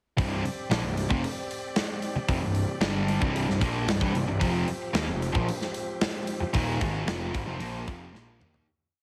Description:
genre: hard rock.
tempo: 113 BPM.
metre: 4/4.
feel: straight.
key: C minor.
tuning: A4 = 441 Hz.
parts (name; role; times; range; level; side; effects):
bright tonewheel organ; sustained chords; 0.2-8.7 s; F3 to D5; -40 LUFS; equal; slow rotary speaker, overdrive.
overdriven electric guitar; riff; 0.2-8.7 s; C2 to Eb4; -34 LUFS; equal; none.
sludgy distorted guitar; riff; 0.2-8.7 s; C2 to Eb4; -35 LUFS; equal; overdrive.
fuzz picked electric bass; bass; 0.2-8.7 s; C1 to Eb2; -35 LUFS; equal; overdrive.
tight metal drum kit; drums; 0.2-8.7 s; hi-hat, kick drum, snare drum, toms; -33 LUFS; equal; none.
room: moderate large studio reverb, RT60 1.2 s.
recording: heavily compressed radio sound, multiband compression.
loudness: -28 LUFS.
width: mono.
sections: 0.2-8.7 riff.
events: fade-out 6.5-8.7; drum fill 8.2-8.7.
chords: 0.2 C5; 4.4 F5.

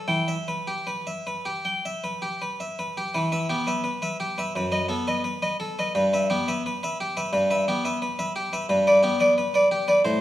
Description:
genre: classical, baroque-style suite movement for harpsichord.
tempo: 74-90 BPM.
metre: 4/4.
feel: rubato.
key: E minor.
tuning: A4 = 436 Hz.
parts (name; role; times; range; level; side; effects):
harpsichord; solo; 0.0-10.2 s; F#2 to G5; -22 LUFS; equal; none.
room: moderate scoring stage reverb, RT60 1.9 s.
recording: minimal, uncompressed stereo recording.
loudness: -22 LUFS.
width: side -13 dB against mid.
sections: 0.0-3.2 A section; 3.2-10.2 A section.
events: none.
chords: 0.1 Em; 4.6 B7/F#; 5.9 Em/G; 8.7 G.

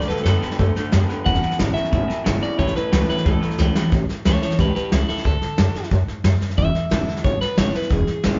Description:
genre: rockabilly.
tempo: 180 BPM.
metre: 4/4.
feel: straight.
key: A major.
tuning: A4 = 440 Hz.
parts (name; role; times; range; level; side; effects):
electric guitar at the edge of break-up; melody; 0.0-8.4 s; E4 to F#5; -28 LUFS; equal; none.
picked steel-string acoustic guitar; accompaniment; 0.0-8.4 s; E2 to F#4; -29 LUFS; equal; none.
electric guitar through a small old amp; riff; 0.0-3.9 s; E2 to B3; -29 LUFS; equal; none.
upright bass; bass; 0.0-8.4 s; E1 to F#2; -24 LUFS; equal; none.
soft brush drum kit; drums; 0.0-8.3 s; hi-hat, kick drum, snare drum; -25 LUFS; equal; none.
room: wet stone room reverb, RT60 1.2 s.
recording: band playing live in one room, nothing above 7.5 kHz.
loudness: -20 LUFS.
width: mono.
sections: 0.0-3.9 A section; 3.9-8.4 B section.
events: drum fill 3.6-3.9; clean electric guitar solo 3.9-8.4.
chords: 0.0 D; 1.3 E7; 2.6 A; 5.3 D; 6.6 E7.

